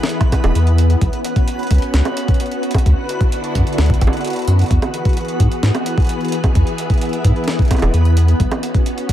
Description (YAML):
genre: IDM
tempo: 130 BPM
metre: 4/4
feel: straight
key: E major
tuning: A4 = 440 Hz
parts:
  - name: soft string machine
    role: sustained chords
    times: 0.0-9.1 s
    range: D3 to G#4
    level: -22 LUFS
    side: left 1 dB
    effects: ensemble chorus
  - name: jungle sampler-style drum kit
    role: drums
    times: 0.0-9.1 s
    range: bongos, hi-hat, snare drum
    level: -25 LUFS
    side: right 2 dB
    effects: dub echo
  - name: backwards swelling texture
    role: texture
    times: 0.0-9.1 s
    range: B3 to B4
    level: -26 LUFS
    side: left 1 dB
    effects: built-in reverb, sidechain pumping
  - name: electronic kick drum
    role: drums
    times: 0.2-9.1 s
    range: none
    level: -16 LUFS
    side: equal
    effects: none
  - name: warm sub bass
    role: bass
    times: 0.4-9.1 s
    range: E1 to G#2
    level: -13 LUFS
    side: equal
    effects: none
room: little or no reverb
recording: echo-heavy mix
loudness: -14 LUFS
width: side -12 dB against mid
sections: 0.0-9.1 A section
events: none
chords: 0.0 E; 1.0 Bsus2; 2.9 Dadd9; 4.7 Eadd9; 8.4 Bsus2